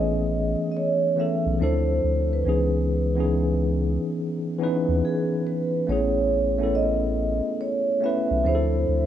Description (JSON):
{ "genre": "lo-fi hip hop", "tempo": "70 BPM", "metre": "4/4", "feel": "swing 66% on 16ths", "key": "unclear", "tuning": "A4 = 443 Hz", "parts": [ { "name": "vibraphone with soft mallets", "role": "melody", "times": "0.0-9.1 s", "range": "G#4 to E5", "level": "-25 LUFS", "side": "right 3 dB", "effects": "tape echo" }, { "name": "tine electric piano", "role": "accompaniment", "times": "0.0-9.1 s", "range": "E3 to B4", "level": "-25 LUFS", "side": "left 1 dB", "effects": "fast stereo tremolo, cassette tape" }, { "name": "soft dub sub bass", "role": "bass", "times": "0.0-9.1 s", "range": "A1 to D#2", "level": "-25 LUFS", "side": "left 1 dB", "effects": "none" } ], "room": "light reverb, small room ambience", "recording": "rough home demo mix, cassette tape", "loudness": "-21 LUFS", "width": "side -10 dB against mid", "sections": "0.0-9.1 A section", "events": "none", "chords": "0.0 Amaj9; 1.6 Dm7; 2.5 C#m7; 5.9 Amaj9; 8.5 Dm7", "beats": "0.74 1.60 | 2.45 3.31 4.17 5.03 | 5.88 6.74 7.60 8.45" }